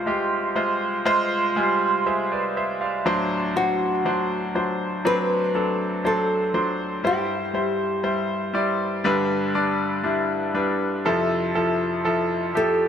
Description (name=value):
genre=pop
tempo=60 BPM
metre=4/4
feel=straight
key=unclear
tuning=A4 = 440 Hz
part: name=nylon-string guitar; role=melody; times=0.0-12.9 s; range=F4 to B4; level=-25 LUFS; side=left 1 dB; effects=none
part: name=bright grand piano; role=accompaniment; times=0.0-12.9 s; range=C2 to Ab5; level=-21 LUFS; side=equal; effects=none
room=moderate lush hall reverb, RT60 2.7 s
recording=none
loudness=-21 LUFS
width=side -8 dB against mid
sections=0.0-12.9 A section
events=grand piano fill 1.0-3.0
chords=0.0 Fm/C; 3.0 D7; 7.0 C/G; 9.0 G; 11.0 Fmaj7